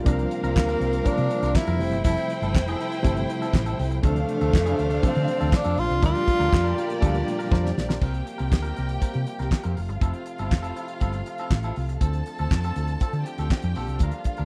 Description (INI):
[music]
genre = disco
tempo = 120 BPM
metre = 4/4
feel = straight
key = F major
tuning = A4 = 440 Hz
[part]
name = warm studio violin section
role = second line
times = 0.0-14.4 s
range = Bb3 to A5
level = -35 LUFS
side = equal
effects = none
[part]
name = barky reed electric piano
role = accompaniment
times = 0.0-8.0 s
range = Bb2 to G5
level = -33 LUFS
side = equal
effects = overdrive, fast tremolo
[part]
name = warm French horn section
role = sustained chords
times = 0.0-14.4 s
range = Bb2 to F4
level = -36 LUFS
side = equal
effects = none
[part]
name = warm tenor saxophone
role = melody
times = 0.1-7.0 s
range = A3 to F4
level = -28 LUFS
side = equal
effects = none
[part]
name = clean electric guitar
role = accompaniment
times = 0.1-14.4 s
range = C4 to Bb4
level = -39 LUFS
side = equal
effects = none
[part]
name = hollow-body short-scale fingered electric bass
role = bass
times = 0.1-14.4 s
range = F1 to D3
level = -28 LUFS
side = equal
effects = none
[part]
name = damped 70s drum kit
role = drums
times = 0.1-14.4 s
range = crash cymbal, handclaps, hi-hat, kick drum, snare drum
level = -24 LUFS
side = equal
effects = none
[sound]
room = studio reverb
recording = dry, close 1970s-style studio recording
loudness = -24 LUFS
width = mono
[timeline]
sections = 0.0-8.0 A section; 8.0-14.4 B section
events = reed electric piano fill 6.5-8.0; drum fill 7.5-8.0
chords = 0.1 C7sus4; 1.8 Fmaj7; 4.0 Dm7; 6.0 Gm7/D; 8.0 C7sus4; 9.8 Fmaj7; 12.0 Dm7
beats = | 0.06 0.55 1.05 1.55 | 2.05 2.54 3.04 3.54 | 4.04 4.53 5.03 5.53 | 6.03 6.53 7.02 7.52 | 8.02 8.52 9.02 9.52 | 10.02 10.52 11.02 11.52 | 12.01 12.51 13.01 13.51 | 14.01